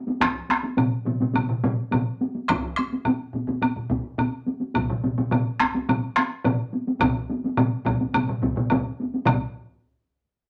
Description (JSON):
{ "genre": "japanese traditional, taiko drum ensemble", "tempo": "106 BPM", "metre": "4/4", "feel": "straight", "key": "none", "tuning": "none", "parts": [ { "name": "taiko ensemble", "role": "percussion", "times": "0.1-9.5 s", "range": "none", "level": "-28 LUFS", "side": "equal", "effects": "none" }, { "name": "taiko ensemble", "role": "percussion", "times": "0.2-9.8 s", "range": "none", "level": "-27 LUFS", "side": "equal", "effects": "none" }, { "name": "taiko ensemble", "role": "percussion", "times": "0.2-9.5 s", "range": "none", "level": "-35 LUFS", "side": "equal", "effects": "none" }, { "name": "woodblock", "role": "percussion", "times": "0.2-9.5 s", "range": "none", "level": "-30 LUFS", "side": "equal", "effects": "none" }, { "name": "taiko ensemble", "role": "percussion", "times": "2.5-9.8 s", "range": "none", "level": "-32 LUFS", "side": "equal", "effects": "none" } ], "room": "wet studio reverb, RT60 0.6 s", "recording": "none", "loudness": "-24 LUFS", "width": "mono", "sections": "0.0-9.3 A section; 9.3-10.5 B section", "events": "none", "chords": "none" }